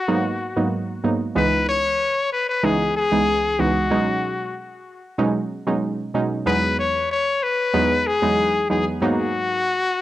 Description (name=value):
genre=afrobeats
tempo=94 BPM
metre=4/4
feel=straight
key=B major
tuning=A4 = 441 Hz
part: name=bright trumpet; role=melody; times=0.0-10.0 s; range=F#4 to C#5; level=-21 LUFS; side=left 3 dB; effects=cassette tape, analog delay
part: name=glassy wavetable pluck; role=accompaniment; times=0.1-9.6 s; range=C#2 to D#4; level=-21 LUFS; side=right 2 dB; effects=chorus, cassette tape
room=moderate studio ambience, RT60 0.5 s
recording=home recording on cassette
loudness=-19 LUFS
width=side -14 dB against mid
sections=0.0-10.0 A section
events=none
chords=0.0 G#m7; 1.4 C#m9; 3.9 B6; 6.5 Emaj7; 9.0 G#m7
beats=0.08 0.72 | 1.36 2.00 2.63 3.27 | 3.91 4.55 5.19 5.83 | 6.46 7.10 7.74 8.38 | 9.02 9.66